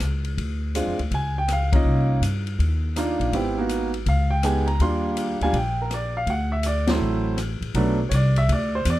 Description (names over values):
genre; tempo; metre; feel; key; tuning
jazz piano trio; 163 BPM; 4/4; swing 66% on 8ths; unclear; A4 = 440 Hz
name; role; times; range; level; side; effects
upright bass; bass; 0.0-9.0 s; Ab1 to G2; -23 LUFS; equal; none
open jazz drum kit; drums; 0.0-9.0 s; hi-hat, kick drum, ride cymbal, rim click, snare drum; -30 LUFS; left 2 dB; none
clear baby grand piano; melody; 0.7-9.0 s; F#3 to C6; -24 LUFS; right 2 dB; plate reverb
room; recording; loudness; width
light reverb; dark, warm production; -20 LUFS; side -15 dB against mid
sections
0.0-7.8 A section; 7.8-9.0 B section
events
band accent 1.7, 6.8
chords
0.4 Dm7b5; 1.1 Db; 1.9 Cm11; 3.3 Abm7; 4.1 Dbsus2; 4.8 Ebmaj9; 6.3 D7; 7.8 Bmadd11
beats
0.01 | 0.38 0.75 1.12 1.49 | 1.86 2.23 2.59 2.96 | 3.33 3.70 4.07 4.44 | 4.81 5.17 5.54 5.91 | 6.28 6.65 7.02 7.39 | 7.76 8.12 8.49 8.86